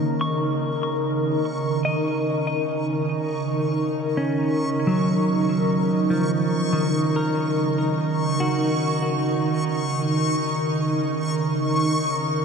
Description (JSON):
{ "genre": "ambient", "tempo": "free time", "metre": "none", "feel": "none", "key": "Eb minor", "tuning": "A4 = 439 Hz", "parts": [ { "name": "airy breathy pad", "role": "sustained chords", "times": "0.0-12.4 s", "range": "Db3 to Bb4", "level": "-22 LUFS", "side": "right 1 dB", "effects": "chorus" }, { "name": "clean electric guitar", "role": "arpeggios", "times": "0.0-10.1 s", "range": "Eb3 to Db6", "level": "-26 LUFS", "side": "equal", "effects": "ping-pong delay" }, { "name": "backwards swelling texture", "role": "texture", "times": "0.0-12.4 s", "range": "Db6", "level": "-30 LUFS", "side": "left 1 dB", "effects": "built-in reverb" } ], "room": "wet huge ambient reverb, RT60 8.1 s", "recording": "dark, warm production", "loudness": "-20 LUFS", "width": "side -6 dB against mid", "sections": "0.0-12.4 A section", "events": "fade-in on synth texture 0.0-12.4", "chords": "0.0 Ebm7" }